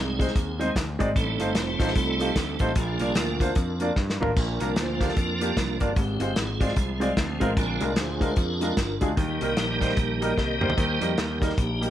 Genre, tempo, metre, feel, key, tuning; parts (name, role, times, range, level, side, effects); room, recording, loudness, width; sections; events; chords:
uptempo gospel; 150 BPM; 4/4; swing 60% on 8ths; A4 = 440 Hz
warm concert grand piano; accompaniment; 0.0-11.9 s; Ab2 to D5; -29 LUFS; equal
tonewheel organ; sustained chords; 0.0-11.9 s; D3 to Eb5; -29 LUFS; right 2 dB; slow rotary speaker, overdrive, chorus vibrato
overdriven picked electric bass; bass; 0.0-11.9 s; F1 to G2; -30 LUFS; equal
warm soul drum kit; drums; 0.2-11.9 s; hi-hat, kick drum, snare drum, splash cymbal, toms; -26 LUFS; equal
light reverb; -23 LUFS; side -12 dB against mid
0.0-11.9 A section
tonewheel organ solo 0.0-11.9; drum fill 4.0-4.4, 10.4-10.8
0.0 Ab; 1.2 F7; 2.8 Bb; 7.6 Bb7; 9.2 Eb